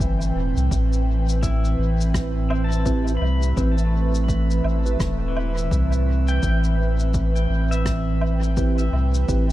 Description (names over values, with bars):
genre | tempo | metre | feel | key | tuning
ambient dub | 84 BPM | 4/4 | swing 60% on 16ths | A minor | A4 = 440 Hz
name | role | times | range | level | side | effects
airy breathy pad | sustained chords | 0.0-9.5 s | A2 to G5 | -26 LUFS | right 2 dB | chorus
pedal steel guitar | arpeggios | 0.0-9.5 s | E3 to B5 | -32 LUFS | left 2 dB | tape echo
warm sub bass | bass | 0.0-9.5 s | E1 to C2 | -21 LUFS | equal | none
electronic kick drum | drums | 0.0-9.5 s | none | -26 LUFS | equal | none
shaker, rim click and woodblock | drums | 0.0-9.5 s | none | -34 LUFS | equal | dub echo
mellow tine electric piano | stabs | 2.9-9.5 s | C4 to B4 | -30 LUFS | right 2 dB | phaser, dub echo
room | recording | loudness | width
light reverb, small room ambience | echo-heavy mix | -19 LUFS | side -15 dB against mid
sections
0.0-9.5 A section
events
none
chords
0.0 Am9